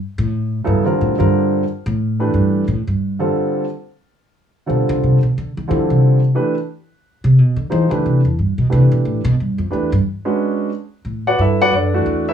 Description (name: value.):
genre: modal jazz.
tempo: 179 BPM.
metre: 3/4.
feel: swing 62% on 8ths.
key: C major.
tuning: A4 = 440 Hz.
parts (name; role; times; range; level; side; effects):
upright bass; bass; 0.2-12.3 s; E2 to E3; -16 LUFS; equal; none.
warm upright piano; accompaniment; 0.6-12.3 s; C#3 to F#5; -18 LUFS; right 1 dB; none.
room: light reverb.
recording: studio ambience.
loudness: -15 LUFS.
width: side -8 dB against mid.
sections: 0.0-3.0 A section; 3.0-11.0 A section; 11.0-12.3 A section.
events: upright bass solo 0.0-11.0.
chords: 0.0 Fsus4; 2.0 G69; 3.0 Cmaj9; 10.0 G#m7b5; 11.0 A13sus4.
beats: 0.31 0.64 | 0.98 1.31 1.65 | 1.99 2.32 2.66 | 2.99 3.33 3.67 | 4.00 4.34 4.67 | 5.01 5.35 5.68 | 6.02 6.35 6.69 | 7.03 7.36 7.70 | 8.03 8.37 8.70 | 9.04 9.37 9.71 | 10.04 10.38 10.71 | 11.05 11.38 11.72 | 12.05.